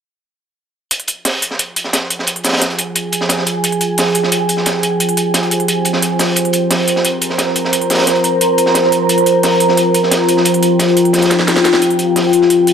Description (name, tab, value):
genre	dark technical drum and bass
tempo	176 BPM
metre	4/4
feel	straight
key	F minor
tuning	A4 = 440 Hz
part	deep dark ambient pad	sustained chords	2.2-12.7 s	F4 to Bb5	-13 LUFS	equal	chorus, built-in reverb, vintage 12-bit sampler grit
part	crunchy breakbeat drum kit	drums	0.9-12.7 s	hi-hat, snare drum	-18 LUFS	right 1 dB	high-pass filter on hats, studio ambience, high-pass filter on snare, high-pass filter on room
part	drum and bass drum kit	drums	0.9-12.7 s	hi-hat, snare drum	-18 LUFS	equal	studio ambience
room	wet plate reverb, RT60 1.1 s, studio reverb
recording	dreamy mix soaked in reverb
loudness	-12 LUFS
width	side -7 dB against mid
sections	0.9-12.7 A section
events	drum fill 11.3-11.8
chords	0.9 Fm